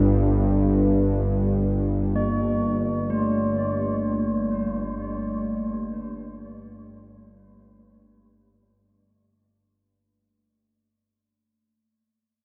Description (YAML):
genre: dark ambient drone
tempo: free time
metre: none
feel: none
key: G minor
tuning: A4 = 441 Hz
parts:
  - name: bronze singing bowl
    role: arpeggios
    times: 0.0-8.8 s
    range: G2 to Bb3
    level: -29 LUFS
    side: equal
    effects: diffuse ambient delay
  - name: bowed-like drone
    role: drone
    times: 0.0-9.9 s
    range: G1 to G2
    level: -26 LUFS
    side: equal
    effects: built-in reverb
room: wet lush hall reverb, RT60 2.6 s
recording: dreamy mix soaked in reverb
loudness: -24 LUFS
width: mono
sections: 0.0-9.8 A section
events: fade-out 0.0-9.8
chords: 0.0 Gsus2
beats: free time